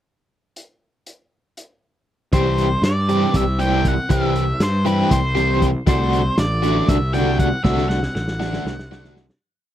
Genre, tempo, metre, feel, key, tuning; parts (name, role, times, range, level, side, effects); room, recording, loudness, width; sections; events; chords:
psychedelic rock; 237 BPM (eighths); 7/8; straight; C lydian; A4 = 440 Hz
vintage drum kit; drums; 0.6-9.4 s; hi-hat, kick drum, snare drum; -22 LUFS; equal
octave-fuzz lead guitar; melody; 2.3-9.1 s; B4 to G5; -24 LUFS; equal; distortion, tape echo
overdriven electric guitar; riff; 2.3-9.2 s; D3 to G4; -20 LUFS; equal; tremolo
fuzz picked electric bass; bass; 2.3-9.3 s; A1 to G2; -21 LUFS; equal; overdrive
little or no reverb; dry, close 1970s-style studio recording; -16 LUFS; side -11 dB against mid
0.6-2.3 pickup bar; 2.3-9.4 groove
fade-out 7.6-9.4; drum fill 7.6-9.4
0.6 N.C.; 2.3 C; 5.9 D